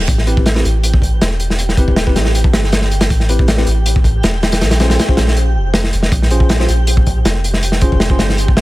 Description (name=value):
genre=drum and bass, jungle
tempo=159 BPM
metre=4/4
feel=straight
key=unclear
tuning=A4 = 439 Hz
part: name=soft dub sub bass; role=bass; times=0.0-8.6 s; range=E1 to Bb1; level=-15 LUFS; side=equal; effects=none
part: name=crunchy breakbeat drum kit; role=drums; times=0.0-8.6 s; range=hi-hat, kick drum, snare drum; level=-14 LUFS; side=equal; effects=none
part: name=twinkling granular texture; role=texture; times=0.0-8.6 s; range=G4 to G5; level=-26 LUFS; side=right 1 dB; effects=built-in reverb
part: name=tine electric piano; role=stabs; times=0.3-8.2 s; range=C4 to C5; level=-23 LUFS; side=left 1 dB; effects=medium stereo tremolo, dub echo
room=little or no reverb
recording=echo-heavy mix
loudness=-11 LUFS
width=side -18 dB against mid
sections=0.0-8.6 A section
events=none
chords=0.1 Am9; 4.6 Bbm9